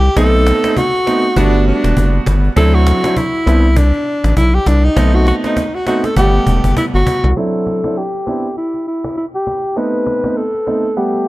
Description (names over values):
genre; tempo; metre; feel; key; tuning
afrobeats; 100 BPM; 4/4; swing 58% on 16ths; unclear; A4 = 439 Hz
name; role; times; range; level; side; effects
breathy alto saxophone; melody; 0.0-11.3 s; D4 to B4; -16 LUFS; equal; digital delay
round analog bass; bass; 0.0-7.3 s; E1 to D2; -12 LUFS; equal; none
cajon; drums; 0.0-11.2 s; none; -22 LUFS; left 1 dB; none
warm grand piano; accompaniment; 0.2-11.3 s; F#3 to F#5; -18 LUFS; right 2 dB; none
room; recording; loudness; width
little or no reverb; low-pass filter; -12 LUFS; side -18 dB against mid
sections
0.0-7.4 A section; 7.4-11.3 B section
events
drum fill 5.0-7.4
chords
0.2 B7b9; 1.4 Gmaj9; 2.6 D9; 3.5 Cmaj9; 5.0 B7b9; 6.2 Gmaj9; 7.4 D9; 8.3 Cmaj9; 9.8 B7b9